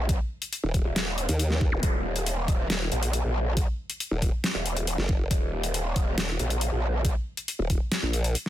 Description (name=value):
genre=heavy wobble dubstep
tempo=138 BPM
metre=4/4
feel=half-time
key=Eb minor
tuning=A4 = 440 Hz
part: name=growl bass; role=bass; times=0.0-7.1 s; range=Eb1 to Bb1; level=-27 LUFS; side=equal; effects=chorus, overdrive
part: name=dubstep drum kit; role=drums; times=0.1-8.5 s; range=hi-hat, snare drum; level=-30 LUFS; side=left 1 dB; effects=overdrive, studio reverb
part: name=electronic kick drum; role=drums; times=0.1-7.8 s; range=none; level=-25 LUFS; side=equal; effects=overdrive, studio reverb
part: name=formant-sweep wobble bass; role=bass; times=0.6-8.4 s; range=Eb1 to Eb2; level=-26 LUFS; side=equal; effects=chorus, overdrive
part: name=zap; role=sound effects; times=1.7-1.8 s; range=none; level=-33 LUFS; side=equal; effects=none
room=digital ambience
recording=dense, heavily limited modern master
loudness=-24 LUFS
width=side -13 dB against mid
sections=0.0-8.5 A section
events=none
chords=0.0 Eb5